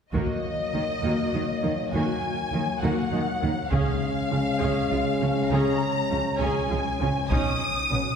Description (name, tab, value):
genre	cinematic, epic orchestral film score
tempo	67 BPM (dotted quarters)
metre	6/8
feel	straight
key	Eb minor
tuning	A4 = 438 Hz
part	warm symphonic violin section	melody	0.1-8.2 s	Eb5 to D#6	-31 LUFS	left 2 dB	none
part	warm symphonic violin section	second line	0.1-8.2 s	Eb5 to D#6	-33 LUFS	left 2 dB	none
part	rich studio viola section	accompaniment	0.1-8.0 s	Eb3 to Ab4	-30 LUFS	equal	none
part	dark French horn section	sustained chords	0.1-8.0 s	Gb3 to C#4	-30 LUFS	left 2 dB	none
part	rich symphonic double bass section	bass	0.1-8.0 s	B1 to Eb2	-30 LUFS	right 2 dB	none
part	warm symphonic cello section	bass	0.1-8.0 s	B2 to Eb3	-31 LUFS	right 2 dB	none
part	taiko ensemble	drums	0.1-8.2 s	none	-31 LUFS	equal	none
room	wet scoring stage reverb, RT60 1.8 s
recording	heard from further back in the room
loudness	-23 LUFS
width	side -7 dB against mid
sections	0.1-8.2 A section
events	none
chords	0.1 Ebm; 3.7 Db; 7.3 Badd9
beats	| 0.14 1.04 | 1.95 2.84 | 3.73 4.61 | 5.51 6.40 | 7.30